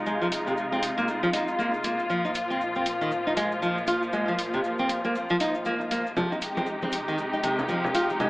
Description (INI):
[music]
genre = afro house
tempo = 118 BPM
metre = 4/4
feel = swing 60% on 16ths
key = unclear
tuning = A4 = 440 Hz
[part]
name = dark studio string section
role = sustained chords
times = 0.0-8.3 s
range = Bb2 to G4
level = -28 LUFS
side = left 1 dB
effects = vintage 12-bit sampler grit, low-pass filter
[part]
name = nylon-string guitar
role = arpeggios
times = 0.1-8.3 s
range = C3 to F4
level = -27 LUFS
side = equal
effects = low-pass filter, digital delay
[part]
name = cabasa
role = percussion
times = 0.1-8.3 s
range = none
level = -49 LUFS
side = right 1 dB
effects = none
[part]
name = electronic hi-hat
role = drums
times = 0.3-8.1 s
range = none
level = -33 LUFS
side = equal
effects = overdrive, small room ambience
[part]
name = congas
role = percussion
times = 6.2-8.3 s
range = none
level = -33 LUFS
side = equal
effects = none
[sound]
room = moderate plate reverb, RT60 1.5 s, studio reverb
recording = AM radio sound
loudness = -24 LUFS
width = side -21 dB against mid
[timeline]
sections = 0.0-8.3 A section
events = none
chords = 0.0 Fm7; 2.1 Bb5; 6.2 Abmaj7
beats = | 0.06 0.57 1.08 1.59 | 2.10 2.61 3.12 3.62 | 4.13 4.64 5.15 5.66 | 6.17 6.67 7.18 7.69 | 8.20